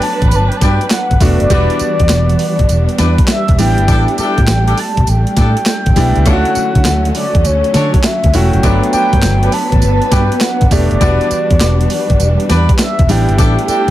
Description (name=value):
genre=R&B, new jack swing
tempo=101 BPM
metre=4/4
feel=swing 67% on 16ths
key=E dorian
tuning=A4 = 441 Hz
part: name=mellow horn-like synth lead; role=melody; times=0.0-13.9 s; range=C#5 to B5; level=-18 LUFS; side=equal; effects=chorus
part: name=clear concert grand piano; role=accompaniment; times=0.0-13.9 s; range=F#3 to G4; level=-20 LUFS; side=equal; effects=none
part: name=warm studio string section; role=sustained chords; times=0.0-13.9 s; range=D3 to B4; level=-20 LUFS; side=right 1 dB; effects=none
part: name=warm horn section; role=stabs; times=0.0-13.9 s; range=D4 to C#5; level=-22 LUFS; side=left 2 dB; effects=none
part: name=clean 12-bit digital drum machine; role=drums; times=0.0-13.9 s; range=handclaps, hi-hat, kick drum, snare drum, tambourine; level=-14 LUFS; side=equal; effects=none
part: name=vintage muted fingered electric bass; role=bass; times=0.2-13.9 s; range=E1 to D3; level=-13 LUFS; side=equal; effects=none
room=digital ambience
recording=none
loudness=-10 LUFS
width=side -14 dB against mid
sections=0.0-13.9 A section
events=none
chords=0.0 Gmaj7; 1.5 Em7; 3.6 A7sus4; 6.3 Dmaj7; 8.6 Gmaj7; 11.0 Em7; 13.1 A7sus4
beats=0.32 0.91 | 1.50 2.10 2.69 3.29 | 3.88 4.47 5.07 5.66 | 6.26 6.85 7.45 8.04 | 8.63 9.23 9.82 10.41 | 11.01 11.60 12.20 12.79 | 13.38